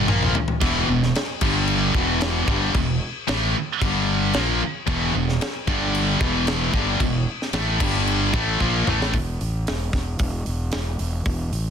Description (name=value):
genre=hard rock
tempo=113 BPM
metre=4/4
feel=straight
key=E minor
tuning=A4 = 440 Hz
part: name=distorted electric guitar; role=riff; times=0.0-9.1 s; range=E2 to A#3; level=-24 LUFS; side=left 13 dB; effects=overdrive
part: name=scooped high-gain guitar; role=riff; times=0.0-9.1 s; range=E2 to A#3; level=-24 LUFS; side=right 11 dB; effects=distortion
part: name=fuzz fingered electric bass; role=bass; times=0.0-11.7 s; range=E1 to A#1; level=-25 LUFS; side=equal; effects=overdrive
part: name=tight metal drum kit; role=drums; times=0.1-11.7 s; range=crash cymbal, hi-hat, kick drum, snare drum, splash cymbal, toms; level=-26 LUFS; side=equal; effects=none
room=light reverb, studio ambience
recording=dense, heavily limited modern master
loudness=-20 LUFS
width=side -8 dB against mid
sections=0.0-9.1 A section; 9.1-11.7 B section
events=drum fill 0.0-0.6, 8.6-9.1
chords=0.1 E5; 1.4 G5; 2.0 Em; 3.8 G5; 4.4 E5; 5.7 G5; 6.2 Em; 7.8 G5; 8.3 Fadd11/A; 9.1 Esus4